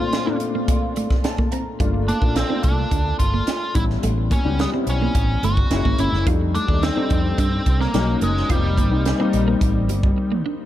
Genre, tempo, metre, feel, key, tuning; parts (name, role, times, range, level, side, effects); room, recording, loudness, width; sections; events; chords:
polished 1980s jazz-funk pop; 108 BPM; 4/4; straight; A4 = 438 Hz
nasal lead guitar with a parked wah; melody; 0.0-10.4 s; G3 to F#4; -25 LUFS; equal; overdrive, tape echo
warm grand piano; accompaniment; 0.0-10.7 s; Bb2 to Bb5; -25 LUFS; left 4 dB; analog chorus
crisp fusion drum kit; drums; 0.1-10.2 s; hi-hat, kick drum, snare drum; -22 LUFS; right 1 dB
clean electric guitar; riff; 0.3-10.5 s; G3 to F4; -29 LUFS; right 4 dB; analog chorus
fretless electric bass; bass; 1.8-10.1 s; F1 to G2; -22 LUFS; equal; analog chorus
light reverb, small room ambience; dark, warm production; -18 LUFS; side -13 dB against mid
0.0-10.7 A section
grand piano fill 0.1-1.8; break 10.2-10.7
0.0 Bbmaj9; 1.8 Gm9; 3.8 A7; 5.7 F#9; 6.3 F13; 7.9 Bmaj9; 8.5 F9sus4